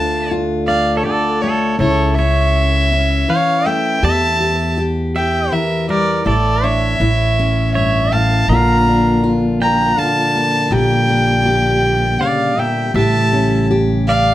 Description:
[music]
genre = acoustic folk duo or small band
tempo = 81 BPM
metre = 3/4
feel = straight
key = unclear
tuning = A4 = 441 Hz
[part]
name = warm fiddle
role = melody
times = 0.0-14.3 s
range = C#5 to Bb5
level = -18 LUFS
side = equal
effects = none
[part]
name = pedal steel guitar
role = second line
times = 0.0-14.3 s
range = A4 to G5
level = -23 LUFS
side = right 3 dB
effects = none
[part]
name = fingerpicked steel-string acoustic guitar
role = accompaniment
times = 0.0-14.3 s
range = D2 to G4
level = -18 LUFS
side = left 2 dB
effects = none
[part]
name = upright bass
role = bass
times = 0.0-14.3 s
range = A1 to E2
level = -18 LUFS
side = right 1 dB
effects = none
[part]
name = mellow tonewheel organ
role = sustained chords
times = 8.5-14.3 s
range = Bb2 to G4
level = -24 LUFS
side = right 1 dB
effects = slow rotary speaker
[sound]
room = moderate studio reverb, RT60 0.5 s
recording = none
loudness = -13 LUFS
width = side -14 dB against mid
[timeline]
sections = 0.0-14.3 A section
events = none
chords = 0.0 Dm; 1.8 A/C#; 4.0 Edim; 6.3 Asus4; 7.0 A; 8.5 Bb; 10.7 Gm/Bb; 12.9 A7

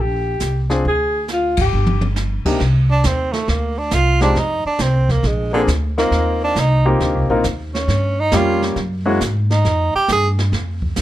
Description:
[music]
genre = jazz, small-group swing and bop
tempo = 136 BPM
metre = 4/4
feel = swing 67% on 8ths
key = C minor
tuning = A4 = 440 Hz
[part]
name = mellow alto saxophone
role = melody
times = 0.0-2.0 s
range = F4 to Ab4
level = -20 LUFS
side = left 1 dB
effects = none
[part]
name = upright bass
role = bass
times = 0.0-11.0 s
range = G1 to G#2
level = -18 LUFS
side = equal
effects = none
[part]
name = jazz brush drum kit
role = drums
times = 0.4-11.0 s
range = brushed snare drum, crash cymbal, hi-hat, kick drum, ride cymbal, snare drum, toms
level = -25 LUFS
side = right 2 dB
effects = none
[part]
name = warm grand piano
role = accompaniment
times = 0.7-9.2 s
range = C3 to Bb4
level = -19 LUFS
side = left 2 dB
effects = none
[part]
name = breathy tenor saxophone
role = second line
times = 2.9-10.3 s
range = D3 to Ab4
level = -19 LUFS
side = right 3 dB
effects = none
[sound]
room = little or no reverb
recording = close, detailed microphones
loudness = -15 LUFS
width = side -14 dB against mid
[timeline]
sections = 0.0-2.6 A section; 2.6-11.0 B section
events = drum fill 1.3-2.2; band accent 1.5; tenor saxophone solo 2.6-11.0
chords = 0.0 Gm7; 0.8 Fm6; 1.7 G5; 2.6 Cmadd9; 4.4 F5; 5.2 Bb7; 6.1 Eb6; 7.9 Gm7b5; 8.8 F#9; 9.6 N.C.

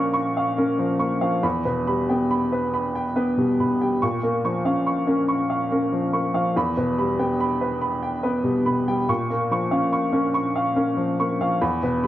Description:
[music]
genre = neoclassical minimalist piano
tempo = 71 BPM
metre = 3/4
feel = rubato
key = unclear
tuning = A4 = 440 Hz
[part]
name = warm upright piano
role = solo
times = 0.0-12.1 s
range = E2 to Db6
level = -20 LUFS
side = equal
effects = none
[sound]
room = moderate concert hall reverb, RT60 2.4 s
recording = none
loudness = -20 LUFS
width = side -13 dB against mid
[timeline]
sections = 0.0-12.1 A section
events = none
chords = 0.0 Bbm; 1.4 Em; 4.0 Bbm; 6.5 Em; 9.1 Bbm

